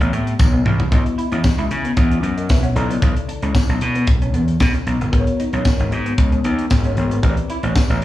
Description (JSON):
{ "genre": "early-eighties boogie funk", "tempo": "114 BPM", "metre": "4/4", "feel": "straight", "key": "unclear", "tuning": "A4 = 439 Hz", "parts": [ { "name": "FM electric piano with tremolo", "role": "accompaniment", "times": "0.0-8.0 s", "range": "C#3 to F#5", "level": "-26 LUFS", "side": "left 4 dB", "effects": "slapback echo" }, { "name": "semi-hollow electric guitar", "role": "riff", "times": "0.0-8.0 s", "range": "G3 to E4", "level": "-28 LUFS", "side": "right 4 dB", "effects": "ensemble chorus, slapback echo" }, { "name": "gritty slap bass", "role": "bass", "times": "0.0-8.0 s", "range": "G1 to C#3", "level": "-19 LUFS", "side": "left 1 dB", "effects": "overdrive" }, { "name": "tight funk drum kit", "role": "drums", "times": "0.0-8.0 s", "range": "hi-hat, kick drum, snare drum, toms", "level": "-18 LUFS", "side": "equal", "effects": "none" }, { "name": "tambourine", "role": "percussion", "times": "0.4-7.9 s", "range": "none", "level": "-39 LUFS", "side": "left 3 dB", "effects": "none" } ], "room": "small room ambience", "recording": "live gig heard through the venue's PA, club reverb, small room reverb", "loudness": "-15 LUFS", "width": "side -14 dB against mid", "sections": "0.9-8.0 A section", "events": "drum fill 0.4-0.9", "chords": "0.0 Am11; 0.9 C#m11; 2.8 Bm11; 5.1 G#m11; 7.2 Am11" }